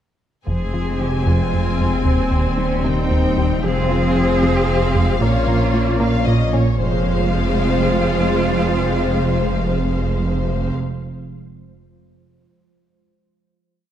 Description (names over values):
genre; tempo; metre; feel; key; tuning
cinematic, hybrid orchestral and electronic film score; 76 BPM (dotted quarters); 6/8; straight; F minor; A4 = 439 Hz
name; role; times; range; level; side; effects
rich symphonic violin section; melody; 0.5-10.7 s; F5 to Ab5; -29 LUFS; left 5 dB; none
warm cello; melody; 0.5-10.7 s; C4 to Ab4; -26 LUFS; right 2 dB; digital delay
warm symphonic violin section; second line; 0.5-10.7 s; C5 to F5; -27 LUFS; left 4 dB; none
warm symphonic viola section; accompaniment; 0.5-10.7 s; Ab3 to C4; -26 LUFS; equal; none
mellow French horn section; sustained chords; 0.5-10.7 s; F3 to Db4; -26 LUFS; left 3 dB; none
warbly tape-like pad; sustained chords; 1.0-10.7 s; C3 to Db5; -28 LUFS; equal; none
tight sequenced synth; arpeggios; 0.5-6.7 s; C3 to Bb4; -29 LUFS; left 3 dB; none
plucky analog bass; riff; 0.5-6.7 s; Eb2 to Bb3; -21 LUFS; right 1 dB; none
dark detuned saw bass; bass; 0.5-10.7 s; Eb1 to Bb1; -24 LUFS; equal; none
warm symphonic cello section; bass; 0.5-10.7 s; Eb2 to Bb2; -26 LUFS; right 2 dB; none
warm symphonic double bass section; bass; 0.5-10.7 s; F1 to Eb2; -24 LUFS; right 3 dB; none
room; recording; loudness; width
light reverb; dark, warm production; -16 LUFS; side -10 dB against mid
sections
0.5-6.8 theme; 6.8-10.0 final chord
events
none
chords
0.5 Fm; 2.1 Cm/Eb; 3.6 Fm; 5.2 Bbm; 6.8 Fm